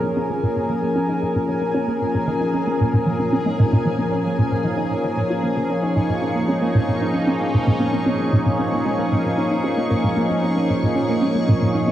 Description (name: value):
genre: ambient, sequencer-driven space music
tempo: 114 BPM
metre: 4/4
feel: straight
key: Bb minor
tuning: A4 = 440 Hz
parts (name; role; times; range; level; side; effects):
- sweeping resonant pad; sustained chords; 0.0-11.9 s; F3 to Bb4; -21 LUFS; equal; chorus, cassette tape
- soft round pluck; arpeggios; 0.0-11.9 s; Ab3 to Eb4; -28 LUFS; right 1 dB; chorus, auto-pan, cassette tape, analog delay
- resonant blip pluck; riff; 0.0-11.9 s; Bb2 to F4; -22 LUFS; equal; phaser, lush chorus, cassette tape, analog delay
- bubbling stepped-filter texture; texture; 0.0-11.9 s; Ab4 to Db6; -28 LUFS; left 1 dB; chorus, built-in reverb, cassette tape
room: wet lush hall reverb, RT60 2.4 s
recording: home recording on cassette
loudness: -18 LUFS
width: side -12 dB against mid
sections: 0.0-11.9 A section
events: fade-in on synth arpeggio sound 0.0-11.9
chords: 0.0 Bbm7